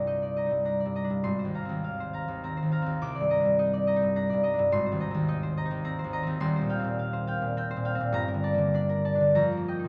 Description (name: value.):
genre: classical, solo harp piece.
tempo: 105 BPM.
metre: 3/4.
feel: uneven beats, rubato.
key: unclear.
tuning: A4 = 440 Hz.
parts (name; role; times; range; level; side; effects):
concert harp; solo; 0.0-9.9 s; Eb1 to D6; -28 LUFS; equal; none.
room: moderate concert hall reverb, RT60 1.9 s.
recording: none.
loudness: -28 LUFS.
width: mono.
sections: 0.0-9.9 A section.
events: none.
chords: 0.0 Cm9; 1.3 Ab69; 3.0 Cm9; 4.7 Abadd9; 6.4 Eb69; 8.1 Gmadd9; 9.4 F9sus4.